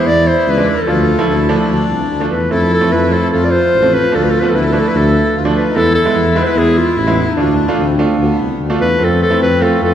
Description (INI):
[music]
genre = klezmer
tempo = 148 BPM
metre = 4/4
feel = straight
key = D dorian sharp4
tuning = A4 = 441 Hz
[part]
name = warm clarinet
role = melody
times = 0.0-9.9 s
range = D4 to D5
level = -16 LUFS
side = equal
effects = none
[part]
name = accordion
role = second line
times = 0.0-9.9 s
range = A3 to F4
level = -19 LUFS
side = left 2 dB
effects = none
[part]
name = bright upright piano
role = accompaniment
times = 0.0-9.9 s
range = E3 to F4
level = -18 LUFS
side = right 2 dB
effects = none
[part]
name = breathy tuba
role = bass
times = 0.1-9.9 s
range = A1 to F2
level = -16 LUFS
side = equal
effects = none
[sound]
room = wet church reverb, RT60 3.4 s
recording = recorded in a church or concert hall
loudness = -11 LUFS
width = side -10 dB against mid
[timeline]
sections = 0.0-9.0 A section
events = none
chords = 0.0 E; 0.9 Dm; 2.5 F; 4.1 Dm; 5.8 E; 7.4 Dm; 9.0 F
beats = 0.06 0.47 | 0.87 1.28 1.69 2.10 | 2.50 2.91 3.32 3.73 | 4.13 4.54 4.95 5.35 | 5.76 6.16 6.57 6.98 | 7.38 7.79 8.19 8.60 | 9.00 9.41 9.81